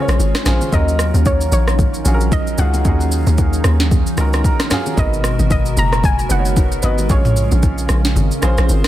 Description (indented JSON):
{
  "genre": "amapiano",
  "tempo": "113 BPM",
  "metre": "4/4",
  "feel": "swing 58% on 16ths",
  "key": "Eb minor",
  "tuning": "A4 = 440 Hz",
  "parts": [
    { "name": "clear grand piano", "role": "accompaniment", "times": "0.0-8.9 s", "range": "Cb4 to Bb5", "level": "-24 LUFS", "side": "right 2 dB", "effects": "none" },
    { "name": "hollow soft pad", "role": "sustained chords", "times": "0.0-8.9 s", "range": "Cb3 to Bb4", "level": "-24 LUFS", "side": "right 1 dB", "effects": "ensemble chorus, sidechain pumping" },
    { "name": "hollow log drum bass", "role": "bass", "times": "0.1-8.8 s", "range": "Gb1 to Eb2", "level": "-16 LUFS", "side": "equal", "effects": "none" },
    { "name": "smooth R&B drum kit", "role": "drums", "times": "0.1-8.9 s", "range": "kick drum, rim click, shaker, snare drum, toms", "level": "-18 LUFS", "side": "equal", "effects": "overdrive, soft clipping on snare" },
    { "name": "bongos and congas", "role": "percussion", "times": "0.2-8.8 s", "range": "none", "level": "-27 LUFS", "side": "left 2 dB", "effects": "none" },
    { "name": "soft round pluck", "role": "melody", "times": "0.7-8.1 s", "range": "Db5 to Bb5", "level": "-23 LUFS", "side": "left 1 dB", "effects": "chorus, tape echo" }
  ],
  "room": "little or no reverb",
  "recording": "dense, heavily limited modern master",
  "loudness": "-13 LUFS",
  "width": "side -13 dB against mid",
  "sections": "0.0-8.9 A section",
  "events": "break 0.0-0.7; grand piano fill 4.2-5.0; kick muted 8.2-8.9",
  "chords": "0.0 Bbm9; 0.7 Ebm9; 5.0 Abm9; 7.1 Bbm9"
}